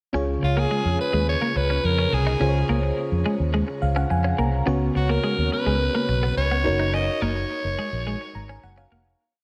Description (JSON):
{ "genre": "pop", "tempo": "106 BPM", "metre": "4/4", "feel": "straight", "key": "Db mixolydian", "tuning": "A4 = 440 Hz", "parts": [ { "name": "FM electric piano", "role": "accompaniment", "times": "0.1-9.2 s", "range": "Db3 to Bb5", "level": "-29 LUFS", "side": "equal", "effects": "shimmer reverb" }, { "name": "twelve-string electric guitar", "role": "riff", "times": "0.1-9.0 s", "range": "Ab3 to Eb4", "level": "-32 LUFS", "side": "equal", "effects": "subtle chorus, shimmer reverb, diffuse ambient delay" }, { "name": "vintage muted fingered electric bass", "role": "bass", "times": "0.1-9.1 s", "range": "F1 to F2", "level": "-26 LUFS", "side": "equal", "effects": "none" }, { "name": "raspy alto saxophone", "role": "melody", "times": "0.4-8.9 s", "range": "F4 to Eb5", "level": "-28 LUFS", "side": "equal", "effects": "shimmer reverb, diffuse ambient delay" } ], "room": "moderate plate reverb, RT60 2.9 s", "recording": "dreamy mix soaked in reverb", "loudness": "-23 LUFS", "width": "mono", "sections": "0.1-9.2 verse", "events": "FM electric piano fill 3.5-4.7, 8.1-9.2; fade-out 6.9-9.2", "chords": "0.1 Db; 4.7 Cbsus2/Db; 6.7 Gb6" }